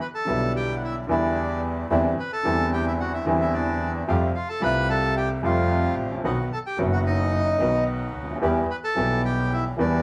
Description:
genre	tango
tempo	110 BPM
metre	4/4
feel	rubato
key	E minor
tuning	A4 = 440 Hz
part	bandoneon	melody	0.0-10.0 s	D4 to B5	-29 LUFS	equal	none
part	clear upright piano	accompaniment	0.3-10.0 s	F#1 to G4	-28 LUFS	equal	none
part	bandoneon	stabs	0.3-10.0 s	G3 to G4	-36 LUFS	equal	none
part	clear double bass	bass	0.3-10.0 s	F#1 to F2	-29 LUFS	equal	none
room	moderate studio reverb, RT60 0.7 s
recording	band playing live in one room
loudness	-24 LUFS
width	mono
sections	0.0-10.0 A section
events	none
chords	0.0 Em7; 1.9 Cadd9/E; 4.1 Fadd9; 6.2 B; 8.4 Em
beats	0.28 0.82 1.37 | 1.91 2.45 2.99 3.54 | 4.08 4.62 5.16 5.71 | 6.25 6.79 7.34 7.88 | 8.43 8.97 9.52

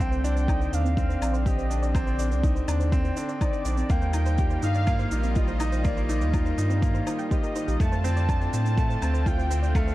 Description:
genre	piano and strings electronica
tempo	123 BPM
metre	4/4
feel	straight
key	C dorian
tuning	A4 = 438 Hz
part	warm velvety synth lead	melody	0.0-9.9 s	D5 to A5	-34 LUFS	equal	chorus
part	lush unison pad	sustained chords	0.0-9.9 s	D3 to F4	-35 LUFS	equal	chorus
part	bright upright piano	riff	0.0-9.9 s	A3 to G4	-30 LUFS	equal	digital delay
part	warm sub bass	bass	0.0-9.9 s	Bb1 to A2	-25 LUFS	equal	sidechain pumping
part	shaker and woodblock	drums	0.0-9.9 s	none	-41 LUFS	equal	small room ambience
part	soft round pluck	arpeggios	0.1-9.9 s	C4 to G5	-40 LUFS	right 4 dB	chorus, sidechain pumping, digital delay
part	electronic kick drum	drums	0.5-9.8 s	none	-25 LUFS	equal	small room ambience
room	little or no reverb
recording	dark, warm production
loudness	-22 LUFS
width	side -16 dB against mid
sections	0.0-9.9 A section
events	none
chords	0.0 Cmadd9; 3.9 Ebadd9; 7.8 F6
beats	0.48 0.97 1.46 | 1.94 2.43 2.92 3.41 | 3.90 4.38 4.87 5.36 | 5.85 6.33 6.82 7.31 | 7.80 8.29 8.77 9.26 | 9.75

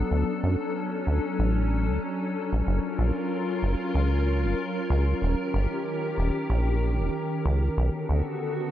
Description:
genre	IDM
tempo	94 BPM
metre	4/4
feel	swing 56% on 16ths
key	unclear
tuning	A4 = 440 Hz
part	glassy FM pad	sustained chords	0.0-8.7 s	D3 to Bb4	-28 LUFS	left 1 dB	ensemble chorus, built-in reverb
part	deep acid bass	bass	0.0-8.2 s	Eb1 to F#2	-24 LUFS	equal	tube saturation
room	light reverb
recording	none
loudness	-24 LUFS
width	side -12 dB against mid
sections	0.0-8.7 A section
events	none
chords	0.1 Dmaj7; 2.7 Gbmaj7; 5.2 Eb7; 7.8 Cbm7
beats	| 0.11 0.75 1.39 2.03 | 2.67 3.31 3.94 4.58 | 5.22 5.86 6.50 7.13 | 7.77 8.41

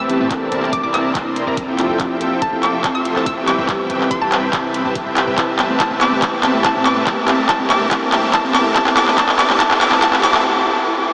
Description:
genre	future bass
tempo	142 BPM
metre	4/4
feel	half-time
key	C major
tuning	A4 = 440 Hz
part	hollow square pluck	melody	0.0-10.4 s	A5 to E6	-23 LUFS	equal	chorus, cassette tape, sidechain pumping, analog delay
part	felt-muted upright piano	accompaniment	0.0-5.4 s	E3 to G4	-29 LUFS	equal	subtle chorus, sidechain pumping, analog delay
part	ethereal airy pad	sustained chords	0.0-10.4 s	C3 to B4	-31 LUFS	equal	none
part	dense compressed supersaw	riff	0.0-10.4 s	C4 to C6	-22 LUFS	equal	sidechain pumping, low-pass filter, analog delay
part	warm 808-style bass	bass	0.0-10.4 s	F1 to A2	-41 LUFS	equal	sidechain pumping
part	trap drum kit	drums	0.1-10.4 s	handclaps, hi-hat	-21 LUFS	equal	high-pass filter on snare, high-pass filter on hats
part	electronic kick drum	drums	0.3-10.1 s	none	-31 LUFS	equal	overdrive
part	thumb-piano-like synth pluck	arpeggios	5.4-11.1 s	A3 to E4	-27 LUFS	equal	chorus, sidechain pumping, analog delay
part	riser and noise sweep	sound effects	7.6-11.1 s	none	-32 LUFS	equal	none
room	wet huge ambient reverb, RT60 7.6 s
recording	dreamy mix soaked in reverb, high-pass filter, small speaker sound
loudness	-16 LUFS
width	mono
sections	0.0-11.1 A section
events	build-up 0.0-11.1; drum fill 0.0-10.4; break 10.4-11.1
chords	0.3 C13; 1.8 Fmaj9; 3.5 Cmaj7; 5.4 Am9; 7.1 C13; 8.5 Fmaj9; 10.2 Cmaj7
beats	| 0.31 0.73 1.15 1.57 | 2.00 2.42 2.84 3.26 | 3.69 4.11 4.53 4.95 | 5.38 5.80 6.22 6.64 | 7.07 7.49 7.91 8.34 | 8.76 9.18 9.60 10.03 | 10.45 10.87

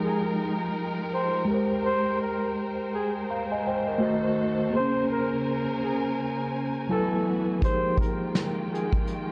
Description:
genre	lo-fi hip hop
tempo	83 BPM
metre	4/4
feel	swing 60% on 16ths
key	F minor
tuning	A4 = 440 Hz
part	mellow flugelhorn	melody	0.0-8.9 s	Ab4 to C5	-33 LUFS	equal	low-pass filter, analog delay
part	mellow tine electric piano	accompaniment	0.0-9.3 s	F3 to Bb5	-30 LUFS	equal	cassette tape, low-pass filter
part	warm studio string section	sustained chords	0.0-9.3 s	Db3 to Ab5	-34 LUFS	equal	low-pass filter
part	vintage brush drum kit	drums	7.6-9.3 s	hi-hat, kick drum, snare drum	-29 LUFS	equal	none
room	moderate spring reverb, RT60 2.3 s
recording	echo-heavy mix, cassette tape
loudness	-27 LUFS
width	mono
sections	0.0-9.3 A section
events	none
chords	0.0 Fm11; 1.5 Abmaj9; 4.0 Adim7; 4.7 Bbm9; 6.9 Gbm11; 7.6 Fm11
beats	0.39 1.11 | 1.84 2.56 3.28 4.00 | 4.73 5.45 6.17 6.90 | 7.62 8.34 9.07

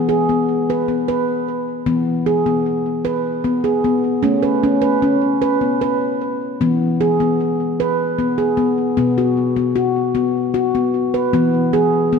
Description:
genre	world meditative, meditative tuned percussion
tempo	51 BPM (dotted quarters)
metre	6/8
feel	straight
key	E major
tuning	A4 = 441 Hz
part	handpan	solo	0.0-12.2 s	B2 to B4	-15 LUFS	left 1 dB	ping-pong delay
room	wet church reverb, RT60 3.6 s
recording	none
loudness	-15 LUFS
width	side -6 dB against mid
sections	0.0-9.0 A section; 9.0-12.2 B section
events	none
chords	0.0 E; 4.2 A; 6.6 E; 9.0 B5; 11.3 E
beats	0.69 | 1.88 3.06 | 4.24 5.42 | 6.61 7.79 | 8.97 10.16 | 11.34

